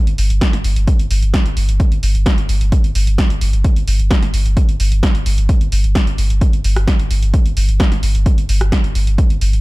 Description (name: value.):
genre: driving peak-time techno.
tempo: 130 BPM.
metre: 4/4.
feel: straight.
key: unclear.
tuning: A4 = 440 Hz.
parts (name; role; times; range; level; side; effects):
saturated sub bass; bass; 0.1-9.6 s; G1; -16 LUFS; equal; tube saturation, sidechain pumping, low-pass filter.
punchy analog drum machine; drums; 0.1-9.6 s; hi-hat, rim click, snare drum; -22 LUFS; right 1 dB; sidechain pumping on hats.
electronic kick drum; drums; 0.4-9.3 s; none; -15 LUFS; equal; none.
room: little or no reverb.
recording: dark, warm production.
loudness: -13 LUFS.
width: side -21 dB against mid.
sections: 0.0-9.6 A section.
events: none.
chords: none.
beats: 0.41 | 0.88 1.34 1.80 2.26 | 2.72 3.18 3.65 4.11 | 4.57 5.03 5.49 5.95 | 6.41 6.88 7.34 7.80 | 8.26 8.72 9.18.